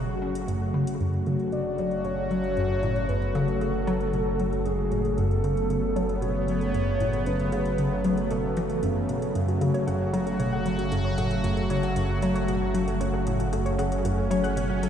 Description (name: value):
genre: ambient, sequencer-driven space music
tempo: 115 BPM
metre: 4/4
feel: straight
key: F# minor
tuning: A4 = 443 Hz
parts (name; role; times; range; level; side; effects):
- sweeping resonant pad; sustained chords; 0.0-14.9 s; C#3 to F#4; -28 LUFS; right 1 dB; chorus
- hollow square pluck; riff; 0.0-14.9 s; F#2 to C#4; -28 LUFS; left 1 dB; chorus, tape echo
- warm sub bass; bass; 0.0-14.9 s; F#1; -32 LUFS; equal; none
- electronic hi-hat and bongos; percussion; 0.4-14.9 s; none; -46 LUFS; left 2 dB; tape echo
- soft octave-layered synth lead; melody; 1.5-9.1 s; G#4 to D5; -31 LUFS; left 1 dB; chorus, tape echo
- warbly dusty pluck; arpeggios; 9.5-14.9 s; F#4 to F#5; -33 LUFS; left 3 dB; chorus, auto-pan, tape echo
room: moderate huge ambient reverb, RT60 7.1 s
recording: played on a big sound system in a bare room, stone room reverb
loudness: -24 LUFS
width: side -9 dB against mid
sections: 0.0-1.0 A section; 1.0-14.9 B section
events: fade-in on drum 1.0-14.9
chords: 0.0 F#m